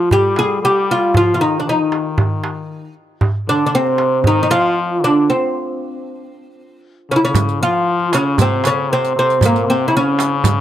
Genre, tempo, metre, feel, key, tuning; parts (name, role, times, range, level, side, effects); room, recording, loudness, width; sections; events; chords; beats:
Arabic maqam ensemble; 116 BPM; 4/4; straight; C minor; A4 = 440 Hz
oud; melody; 0.0-10.6 s; Bb3 to Ab4; -15 LUFS; right 1 dB
trombone with metal mute; second line; 0.0-10.6 s; Bb2 to G3; -21 LUFS; left 5 dB
darbuka; percussion; 0.1-10.6 s; -18 LUFS; right 2 dB
riq; percussion; 7.4-10.6 s; -23 LUFS; right 10 dB
small room ambience; dry, close 1970s-style studio recording; -13 LUFS; side -11 dB against mid
0.0-7.4 A section; 7.4-10.6 B section
stop 5.3-7.4
0.11 0.63 | 1.15 1.66 2.18 2.70 | 3.22 3.73 4.25 4.77 | 5.29 5.80 6.32 6.83 | 7.35 7.87 8.38 8.90 | 9.41 9.93 10.45